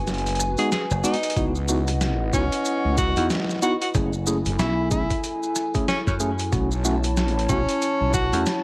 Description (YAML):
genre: glitch hop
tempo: 93 BPM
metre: 4/4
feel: swing 59% on 16ths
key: C# minor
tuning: A4 = 440 Hz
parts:
  - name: dark analog pad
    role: sustained chords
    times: 0.0-8.6 s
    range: E4 to A5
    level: -28 LUFS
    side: left 1 dB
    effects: chorus, sidechain pumping
  - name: wobble bass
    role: bass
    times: 0.0-8.3 s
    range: F#1 to C#2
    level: -24 LUFS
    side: equal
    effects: chorus, overdrive
  - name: boom bap sampler-style drum kit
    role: drums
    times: 0.1-8.6 s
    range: hi-hat, rim click, snare drum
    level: -28 LUFS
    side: equal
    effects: overdrive, studio reverb
  - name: maracas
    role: percussion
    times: 0.1-8.6 s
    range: none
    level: -31 LUFS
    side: right 1 dB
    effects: none
  - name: clear tenor saxophone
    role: melody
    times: 0.6-8.4 s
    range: C#4 to G#4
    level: -26 LUFS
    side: equal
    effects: vintage 12-bit sampler grit, cassette tape
  - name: tine electric piano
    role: stabs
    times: 0.6-8.4 s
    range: G#3 to G#4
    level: -27 LUFS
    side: equal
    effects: sidechain pumping, analog delay
  - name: dry thumbed slap bass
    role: bass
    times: 0.9-8.4 s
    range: F#1 to F#2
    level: -25 LUFS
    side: equal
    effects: none
  - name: electronic kick drum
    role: drums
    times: 1.4-8.3 s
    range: none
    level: -26 LUFS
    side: equal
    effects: overdrive, studio reverb
room: moderate spring reverb, RT60 2.0 s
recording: home recording on cassette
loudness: -20 LUFS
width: side -26 dB against mid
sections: 0.0-8.6 A section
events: break 0.1-1.4; drum fill 1.0-1.4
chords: 0.0 G#m7; 1.4 C#m11; 3.9 F#m9; 6.5 B9sus4